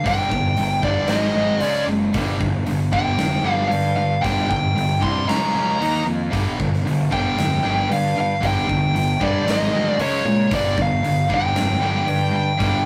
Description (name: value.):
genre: hard rock.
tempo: 115 BPM.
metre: 4/4.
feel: straight.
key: G minor.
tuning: A4 = 440 Hz.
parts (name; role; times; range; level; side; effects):
high-gain lead guitar; melody; 0.0-12.9 s; C#5 to C6; -24 LUFS; equal; distortion.
cranked stack guitar; riff; 0.0-12.8 s; G2 to Eb4; -26 LUFS; equal; overdrive.
heavy high-gain guitar; riff; 0.0-12.8 s; G2 to Eb4; -30 LUFS; equal; distortion.
fuzz picked electric bass; bass; 0.1-12.8 s; F1 to Bb2; -27 LUFS; equal; overdrive.
big rock drum kit; drums; 0.1-12.7 s; hi-hat, kick drum, snare drum; -28 LUFS; equal; none.
room: wet booth ambience, RT60 0.2 s.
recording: rough rehearsal-room recording, warm saturation.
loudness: -20 LUFS.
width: mono.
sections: 0.0-12.9 A section.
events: none.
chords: 0.0 G5; 1.1 Ab5; 1.6 C#5; 2.1 G5; 5.3 C#5; 5.8 Eb5; 6.3 G5; 9.5 Ab5; 10.0 C#5; 10.5 G5.